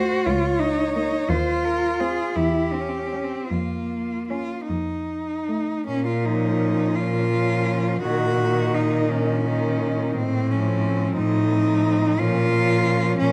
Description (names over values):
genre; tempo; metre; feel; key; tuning
classical, lyrical piece for cello ensemble; 49-60 BPM (dotted quarters); 6/8; rubato; Bb minor; A4 = 439 Hz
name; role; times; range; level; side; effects
rich cello; melody; 0.0-13.3 s; C4 to Db5; -27 LUFS; equal; none
rich cello; second line; 0.0-13.3 s; Bb3 to Gb4; -29 LUFS; equal; none
rich cello; accompaniment; 0.0-13.3 s; Eb3 to C#4; -31 LUFS; equal; none
rich cello; bass; 0.0-13.3 s; Db2 to Bb2; -27 LUFS; equal; none
room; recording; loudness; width
moderate recital hall reverb, RT60 1.4 s; dark, warm production; -23 LUFS; mono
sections
0.0-5.9 A section; 5.9-13.3 B section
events
none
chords
0.3 Bbm/Db; 1.3 Ab69/Eb; 2.4 Em6; 3.5 Bbm/F; 4.7 F; 5.9 Bbm; 8.0 Ebm/Bb; 10.2 F7/A; 12.2 Bbm